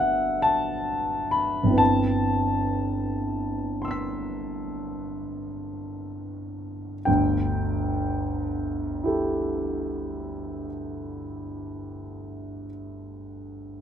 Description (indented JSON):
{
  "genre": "classical, impressionist solo piano",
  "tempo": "27-46 BPM (dotted quarters)",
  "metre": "9/8",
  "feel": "rubato",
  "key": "G major",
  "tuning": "A4 = 439 Hz",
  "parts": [
    { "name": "clear concert grand piano", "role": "solo", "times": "0.0-13.8 s", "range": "G1 to B6", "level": "-25 LUFS", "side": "equal", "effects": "none" }
  ],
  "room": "light reverb",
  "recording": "close, detailed microphones",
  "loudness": "-24 LUFS",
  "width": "side -9 dB against mid",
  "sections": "0.0-7.1 A section; 7.1-12.9 B section",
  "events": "slowing down 0.0-7.1",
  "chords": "0.0 Gmaj7; 1.8 Am9/G; 7.1 Gsus2"
}